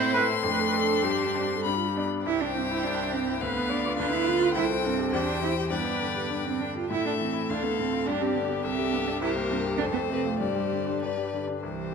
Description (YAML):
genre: quick classical-period movement for piano quintet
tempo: 96-106 BPM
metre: 2/4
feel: rubato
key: C major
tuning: A4 = 440 Hz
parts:
  - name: rich violin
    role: melody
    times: 0.0-11.9 s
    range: C5 to C6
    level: -32 LUFS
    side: left 10 dB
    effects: none
  - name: rich cello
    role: second line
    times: 0.0-11.9 s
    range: E3 to F4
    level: -30 LUFS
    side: right 8 dB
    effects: none
  - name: rich violin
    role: second line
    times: 0.0-11.4 s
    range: D4 to D5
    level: -36 LUFS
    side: left 6 dB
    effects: none
  - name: bright concert grand piano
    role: accompaniment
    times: 0.0-11.9 s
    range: C2 to D5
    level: -30 LUFS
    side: left 4 dB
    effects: none
  - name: rich viola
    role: accompaniment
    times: 0.0-11.9 s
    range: F4 to D5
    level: -32 LUFS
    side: right 4 dB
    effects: none
room: wet recital hall reverb, RT60 1.5 s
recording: none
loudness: -25 LUFS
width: side -6 dB against mid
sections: 0.0-2.3 A section; 2.3-11.6 B section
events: none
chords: 0.4 Dm7/F; 1.0 Gsus4; 1.6 G; 2.3 C; 3.4 Bdim/D; 4.6 C5; 5.1 C/E; 5.7 G; 6.9 Am; 7.5 Dm7; 8.1 G; 8.6 C; 9.2 C7(no3); 9.8 F; 10.4 Gsus4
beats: 0.44 | 1.04 1.65 | 2.26 2.84 | 3.42 3.99 | 4.55 5.13 | 5.71 6.31 | 6.90 7.49 | 8.07 8.65 | 9.22 9.80 | 10.40 11.02 | 11.63